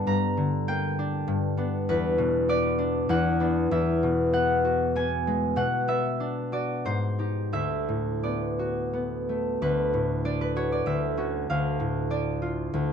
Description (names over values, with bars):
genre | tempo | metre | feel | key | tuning
classical, solo harp piece | 84-101 BPM | 3/4 | rubato | unclear | A4 = 440 Hz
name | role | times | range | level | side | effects
concert harp | solo | 0.0-12.9 s | D2 to Bb5 | -24 LUFS | left 1 dB | none
room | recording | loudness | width
moderate studio reverb, RT60 0.8 s | dark, warm production | -24 LUFS | side -7 dB against mid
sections
0.0-9.6 A section; 9.6-12.9 A section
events
none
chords
0.1 Gm; 1.3 G; 1.9 Em7; 3.7 Eadd9; 5.6 Bm; 6.9 G#maj7; 7.5 D6; 10.9 F#m7/D; 11.5 Dm